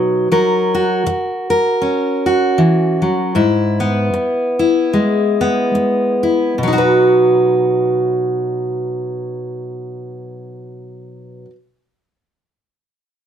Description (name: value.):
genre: folk, solo fingerstyle acoustic guitar.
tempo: 71-80 BPM.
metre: 4/4.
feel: swing 57% on 8ths.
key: B major.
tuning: A4 = 440 Hz.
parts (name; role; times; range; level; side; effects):
fingerpicked steel-string acoustic guitar; solo; 0.0-11.6 s; G#2 to B4; -14 LUFS; equal; none.
room: light reverb.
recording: none.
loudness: -13 LUFS.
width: side -9 dB against mid.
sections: 0.3-6.6 A section; 6.6-9.9 B section.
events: slowing down 0.3-6.6.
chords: 0.3 F#; 3.3 E/G#; 6.6 B.